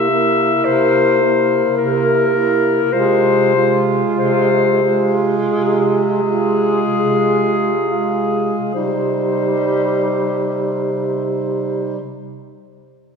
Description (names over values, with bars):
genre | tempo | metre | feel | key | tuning
classical, lyrical piece for single-reed quartet | 33-54 BPM | 4/4 | rubato | unclear | A4 = 440 Hz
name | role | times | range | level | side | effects
clear clarinet | melody | 0.0-12.0 s | Ab4 to E5 | -18 LUFS | left 6 dB | none
clear alto saxophone | second line | 0.0-12.0 s | Eb4 to F4 | -22 LUFS | right 8 dB | none
warm tenor saxophone | accompaniment | 0.0-12.0 s | G3 to Bb3 | -20 LUFS | left 1 dB | none
clear bass clarinet | bass | 0.0-12.0 s | C3 | -20 LUFS | right 4 dB | none
room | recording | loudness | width
wet concert hall reverb, RT60 2.3 s | heard from further back in the room | -14 LUFS | side -6 dB against mid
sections
0.0-8.7 A section; 8.7-13.2 B section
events
slowing down 0.0-8.7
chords
0.0 C7; 2.9 Fm/C; 8.7 Cm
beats
0.65 1.78 | 2.94 4.18 5.51 7.01 | 8.74 10.36 11.96